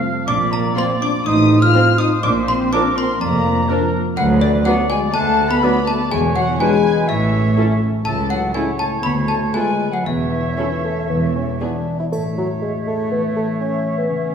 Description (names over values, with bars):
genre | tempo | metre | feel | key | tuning
cinematic, playful, whimsical film cue | 122 BPM | 4/4 | straight | A major from 4.2 s | A4 = 438 Hz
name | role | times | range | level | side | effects
warm cor anglais | second line | 0.0-14.3 s | A4 to F#5 | -27 LUFS | right 2 dB | none
mellow French horn section | sustained chords | 0.0-11.9 s | D3 to F4 | -21 LUFS | left 2 dB | none
concert harp | arpeggios | 0.0-14.3 s | F2 to C#5 | -25 LUFS | left 4 dB | none
trough xylophone with wooden mallets | melody | 0.3-11.8 s | D5 to F6 | -25 LUFS | left 1 dB | none
hollow concert flute | second line | 0.3-14.3 s | D5 to F6 | -25 LUFS | left 1 dB | none
muted studio violin section | second line | 0.3-11.8 s | D5 to F6 | -27 LUFS | left 3 dB | none
muted studio cello section | bass | 0.3-11.5 s | C#2 to Bb2 | -22 LUFS | right 2 dB | none
muted studio double bass section | bass | 0.3-11.5 s | E1 to D2 | -25 LUFS | right 4 dB | none
muted studio violin section | melody | 0.8-11.7 s | G#4 to D5 | -30 LUFS | left 3 dB | none
clear clarinet | second line | 0.8-14.3 s | A3 to F4 | -28 LUFS | left 1 dB | none
dark bassoon | accompaniment | 0.8-14.3 s | F3 to E4 | -26 LUFS | right 1 dB | none
muted studio viola section | accompaniment | 0.8-11.7 s | Bb3 to F#4 | -30 LUFS | right 2 dB | none
triangle | percussion | 12.1-13.1 s | none | -47 LUFS | right 3 dB | none
room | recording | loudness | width
wet scoring stage reverb, RT60 1.8 s | small room reverb | -15 LUFS | side -7 dB against mid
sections
0.0-12.1 A section; 12.1-14.3 B section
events
none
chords
0.3 Bb; 1.3 F/A; 2.2 Bb; 4.2 Bm/D; 6.1 E9; 7.1 A; 8.1 A/C#; 9.0 Bm7b5/D; 10.1 A/E; 11.1 E; 12.1 A